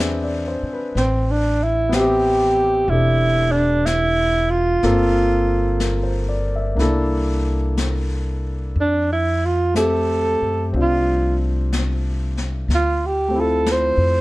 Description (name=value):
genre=jazz ballad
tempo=62 BPM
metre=4/4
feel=swing 66% on 8ths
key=unclear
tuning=A4 = 439 Hz
part: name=warm baby grand piano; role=accompaniment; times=0.0-14.2 s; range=A3 to E5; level=-24 LUFS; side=left 2 dB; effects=none
part: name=upright bass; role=bass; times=0.0-14.2 s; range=E1 to F#2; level=-21 LUFS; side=equal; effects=none
part: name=jazz brush drum kit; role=drums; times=0.0-14.2 s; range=brushed snare drum, hi-hat, snare drum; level=-30 LUFS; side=left 3 dB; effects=none
part: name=breathy alto saxophone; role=melody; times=1.0-14.2 s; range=C4 to C5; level=-18 LUFS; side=right 2 dB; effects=none
room=light reverb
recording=dark, warm production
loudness=-17 LUFS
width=side -19 dB against mid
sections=0.0-14.2 A section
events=none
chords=0.0 E7b13; 1.0 Am9; 4.8 Gm11; 6.8 C13; 8.8 Fmaj9; 12.7 Dm7